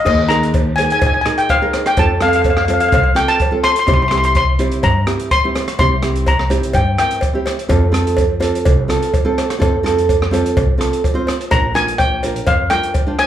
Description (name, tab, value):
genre	calypso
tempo	126 BPM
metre	4/4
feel	straight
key	unclear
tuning	A4 = 440 Hz
part	steel pan	melody	0.0-7.4, 11.5-13.3 s	Eb5 to C6	-16 LUFS	left 2 dB	slapback echo
part	nylon-string guitar	accompaniment	0.0-13.3 s	C4 to C5	-20 LUFS	right 4 dB	slapback echo
part	upright bass	bass	0.1-12.7 s	Bb1 to G2	-18 LUFS	equal	none
part	open jazz drum kit	drums	0.1-13.3 s	crash cymbal, hi-hat, kick drum, rim click	-20 LUFS	equal	none
part	cowbell	percussion	0.1-13.3 s	none	-24 LUFS	equal	slapback echo
room	light reverb, small room ambience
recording	live gig heard through the venue's PA, club reverb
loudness	-13 LUFS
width	side -10 dB against mid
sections	0.1-13.3 A section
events	none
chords	0.1 Ebsus4; 2.0 F; 3.9 C; 7.7 F; 11.5 Bb